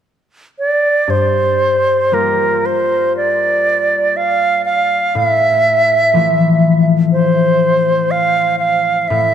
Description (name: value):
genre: celtic folk, Celtic slow air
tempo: 57-62 BPM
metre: 4/4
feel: rubato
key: G dorian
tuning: A4 = 440 Hz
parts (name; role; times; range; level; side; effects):
- bright reedy wooden flute; melody; 0.6-9.3 s; Bb4 to F5; -12 LUFS; right 2 dB; none
- concert harp; accompaniment; 1.1-9.3 s; G2 to F4; -17 LUFS; left 5 dB; none
room: moderate cathedral reverb, RT60 4.3 s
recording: none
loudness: -11 LUFS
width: side -9 dB against mid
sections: 0.0-1.1 A section; 1.1-9.3 B section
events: none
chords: 0.0 N.C.; 1.1 Gm7; 5.2 Fmaj7/A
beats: 0.06 | 1.08 2.13 3.17 4.16 | 5.15 6.13 7.11 8.10 | 9.09